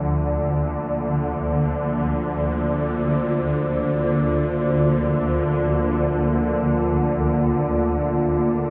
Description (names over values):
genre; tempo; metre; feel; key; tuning
dark ambient drone; free time; none; none; unclear; A4 = 440 Hz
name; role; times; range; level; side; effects
deep dark ambient pad; sustained chords; 0.0-8.7 s; D3 to D5; -24 LUFS; equal; chorus, built-in reverb, shimmer reverb
swarming drone; drone; 0.0-8.7 s; D2 to D3; -25 LUFS; equal; built-in reverb
quartz singing bowl; texture; 0.0-8.7 s; F3 to F4; -37 LUFS; equal; none
room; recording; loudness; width
wet huge ambient reverb, RT60 7.9 s; none; -22 LUFS; mono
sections
0.0-8.7 A section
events
none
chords
0.0 Bb/D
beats
free time